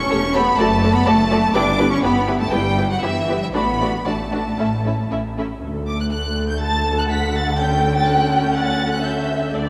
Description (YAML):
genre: quick classical-period movement for string orchestra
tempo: 114-126 BPM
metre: 4/4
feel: rubato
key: D major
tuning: A4 = 440 Hz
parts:
  - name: warm symphonic violin section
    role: melody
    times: 0.0-9.5 s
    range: E5 to B6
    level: -26 LUFS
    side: equal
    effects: none
  - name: rich symphonic cello section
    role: bass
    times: 0.0-9.7 s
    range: D2 to D4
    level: -25 LUFS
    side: equal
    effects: none
  - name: rich symphonic double bass section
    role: bass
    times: 0.0-9.7 s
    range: E1 to D2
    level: -26 LUFS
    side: equal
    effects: none
  - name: warm symphonic violin section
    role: second line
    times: 0.1-9.7 s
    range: E4 to A5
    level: -26 LUFS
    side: equal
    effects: none
  - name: rich symphonic viola section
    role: accompaniment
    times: 0.1-9.7 s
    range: A3 to A4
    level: -27 LUFS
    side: equal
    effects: none
room: wet concert hall reverb, RT60 2.6 s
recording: none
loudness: -19 LUFS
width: mono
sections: 0.0-5.6 A section; 5.6-9.7 B section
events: none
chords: 0.0 A7/E; 0.6 D/F#; 1.6 Em7/G; 3.5 D/A; 4.6 A; 5.6 D; 7.6 A7/D